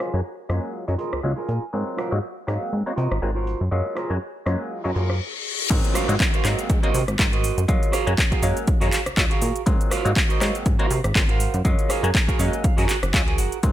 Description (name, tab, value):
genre	filtered disco house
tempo	121 BPM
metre	4/4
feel	swing 56% on 16ths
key	unclear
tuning	A4 = 440 Hz
part	bright clav	accompaniment	0.0-13.7 s	Gb3 to F5	-28 LUFS	left 1 dB	phaser, sidechain pumping, low-pass filter
part	semi-hollow electric guitar	riff	0.0-13.6 s	F4 to Ab5	-28 LUFS	right 5 dB	lush chorus, sidechain pumping, low-pass filter
part	house drum kit	drums	0.0-13.7 s	crash cymbal, handclaps, hi-hat, rim click, shaker	-26 LUFS	equal	overdrive, sidechain pumping on hats, low-pass filter on hats, low-pass filter on snare, sidechain pumping on cymbals, low-pass filter on cymbals, sidechain pumping on perc, low-pass filter on perc, low-pass filter on room
part	plucky analog bass	bass	0.1-13.7 s	Gb1 to C3	-24 LUFS	equal	sidechain pumping, low-pass filter
part	reverse cymbal and downlifter	sound effects	5.0-9.7 s	none	-30 LUFS	left 3 dB	none
part	electronic kick drum	drums	5.7-13.7 s	none	-21 LUFS	equal	overdrive
room	digital ambience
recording	none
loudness	-20 LUFS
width	side -13 dB against mid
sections	0.0-5.7 A section; 5.7-13.7 B section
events	filter sweep 0.0-5.7; clean electric guitar fill 0.7-1.7, 12.1-13.6; reverse cymbal 5.0-5.7; drop 5.7-13.7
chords	0.0 Gbmaj9; 1.7 Ab13; 3.7 Gbmaj9; 5.7 Ab13; 7.7 Gbmaj9; 9.7 Ab13; 11.7 Gbmaj9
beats	0.25 0.74 1.24 | 1.73 2.23 2.73 3.22 | 3.72 4.21 4.71 5.21 | 5.70 6.20 6.69 7.19 | 7.68 8.18 8.68 9.17 | 9.67 10.16 10.66 11.15 | 11.65 12.15 12.64 13.14 | 13.63